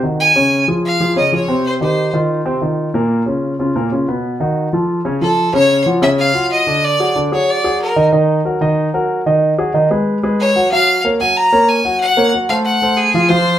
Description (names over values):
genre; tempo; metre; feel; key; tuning
jazz; 185 BPM; 4/4; straight; unclear; A4 = 437 Hz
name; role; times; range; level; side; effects
warm grand piano; accompaniment; 0.0-13.6 s; Bb2 to Gb5; -15 LUFS; equal; none
bright fiddle; melody; 0.2-2.1, 5.2-8.0, 10.4-13.6 s; Ab4 to Bb5; -14 LUFS; equal; none
room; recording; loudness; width
wet studio reverb, RT60 0.7 s; heard from further back in the room; -12 LUFS; side -11 dB against mid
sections
0.0-5.5 A section; 5.5-13.6 B section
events
none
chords
0.4 Dbmaj7; 1.6 Cm; 2.3 F5; 2.9 Bbm; 4.2 B7#11; 4.9 Dbaug; 5.5 Gb5; 6.8 D(#11); 8.1 Ebm; 9.4 Abm7; 10.1 Db5; 10.7 Gbmaj7; 12.0 Gb(#11); 12.7 Ab13b9